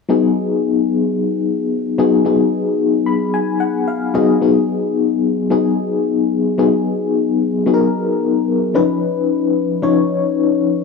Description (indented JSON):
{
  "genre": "R&B",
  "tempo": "111 BPM",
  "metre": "4/4",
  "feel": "swing 66% on 16ths",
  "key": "G# dorian",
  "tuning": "A4 = 440 Hz",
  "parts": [
    { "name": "FM electric piano with tremolo", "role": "solo", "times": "0.1-10.8 s", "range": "E#3 to B5", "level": "-14 LUFS", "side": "left 4 dB", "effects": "cassette tape" }
  ],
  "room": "moderate spring reverb, RT60 1.7 s",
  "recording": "home recording on cassette",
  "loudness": "-14 LUFS",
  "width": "side -4 dB against mid",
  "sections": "0.1-4.4 A section; 4.4-10.8 B section",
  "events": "FM electric piano fill 2.8-4.4",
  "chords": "0.1 G#m7; 8.7 C#9",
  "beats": "| 0.09 0.63 1.17 1.71 | 2.25 2.79 3.33 3.88 | 4.42 4.96 5.50 6.04 | 6.58 7.12 7.66 8.20 | 8.74 9.28 9.82 10.36"
}